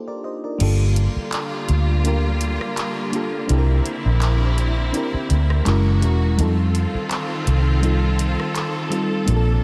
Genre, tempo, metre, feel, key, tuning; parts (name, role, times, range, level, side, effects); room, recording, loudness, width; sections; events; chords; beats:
contemporary R&B; 83 BPM; 4/4; swing 54% on 16ths; G minor; A4 = 439 Hz
mellow FM electric piano; accompaniment; 0.0-9.6 s; G3 to Eb5; -28 LUFS; equal; chorus
rich studio string section; sustained chords; 0.6-9.6 s; C3 to A4; -29 LUFS; equal
vintage muted fingered electric bass; bass; 0.6-9.6 s; E1 to F2; -20 LUFS; equal
trap drum kit; drums; 0.6-9.5 s; crash cymbal, handclaps, hi-hat, rim click; -33 LUFS; equal
moderate lush hall reverb, RT60 2.5 s; dreamy mix soaked in reverb; -20 LUFS; mono
0.6-9.6 A section
kick muted 0.6-9.6
0.0 Ebmaj7; 0.6 Gm7; 3.5 C9; 5.7 F#9; 6.4 F7
| 0.60 1.32 2.05 2.77 | 3.49 4.22 4.94 5.66 | 6.38 7.11 7.83 8.55 | 9.28